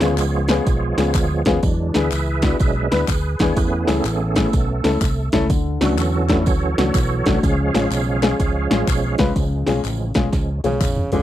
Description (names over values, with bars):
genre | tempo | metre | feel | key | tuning
uptempo gospel | 124 BPM | 4/4 | swing 65% on 8ths | unclear | A4 = 440 Hz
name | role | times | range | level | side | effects
dark grand piano | accompaniment | 0.0-11.2 s | C#3 to B4 | -22 LUFS | left 4 dB | none
bright tonewheel organ | sustained chords | 0.0-10.6 s | E3 to E#5 | -24 LUFS | right 4 dB | slow rotary speaker, chorus vibrato
fingered electric bass | bass | 0.0-11.2 s | E1 to E2 | -22 LUFS | equal | none
deep house drum kit | drums | 0.0-11.2 s | hi-hat, kick drum, snare drum, toms | -20 LUFS | equal | overdrive
tambourine and handclaps | percussion | 0.0-11.2 s | none | -33 LUFS | left 4 dB | none
breathy tenor saxophone | melody | 10.7-11.2 s | C#3 to D3 | -23 LUFS | right 3 dB | none
room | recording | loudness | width
little or no reverb | dry, close 1970s-style studio recording | -16 LUFS | side -13 dB against mid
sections
0.0-9.4 A section; 9.4-11.2 B section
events
tonewheel organ solo 0.0-9.4, 9.4-11.2; drum fill 10.3-11.2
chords
0.0 C#7; 1.6 E7; 3.6 Amaj7; 5.5 Dmaj7; 7.4 C#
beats
0.18 0.67 1.15 | 1.63 2.11 2.60 3.08 | 3.56 4.05 4.53 5.01 | 5.50 5.98 6.46 6.95 | 7.43 7.91 8.39 8.88 | 9.36 9.84 10.32 10.81